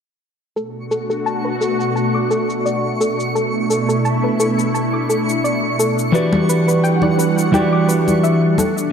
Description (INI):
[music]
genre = sunset chillout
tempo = 86 BPM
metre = 4/4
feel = swing 54% on 16ths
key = B minor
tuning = A4 = 440 Hz
[part]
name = lush unison pad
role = sustained chords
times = 0.7-8.9 s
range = B2 to F#5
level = -20 LUFS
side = equal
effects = chorus, phaser
[part]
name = soft round pluck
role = arpeggios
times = 0.6-8.8 s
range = A4 to D6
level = -21 LUFS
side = equal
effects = chorus, vintage 12-bit sampler grit, ping-pong delay
[part]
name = cabasa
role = drums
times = 0.6-8.9 s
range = none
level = -28 LUFS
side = left 5 dB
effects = overdrive, low-pass filter on perc
[part]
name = twinkling granular texture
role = texture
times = 0.8-8.9 s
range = C#6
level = -27 LUFS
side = right 2 dB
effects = built-in reverb
[part]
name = clean electric guitar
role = accompaniment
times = 6.1-8.6 s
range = E3 to D5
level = -16 LUFS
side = moving between left 3 dB and right 5 dB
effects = auto-pan, ping-pong delay
[part]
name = congas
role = percussion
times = 6.3-8.7 s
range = none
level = -21 LUFS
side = left 2 dB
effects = none
[sound]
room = moderate lush hall reverb, RT60 1.9 s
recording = dark, warm production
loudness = -15 LUFS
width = side -7 dB against mid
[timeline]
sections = 0.6-8.9 A section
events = filter sweep on synth arpeggio sound 0.6-8.9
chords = 0.6 Bm7; 6.1 Em9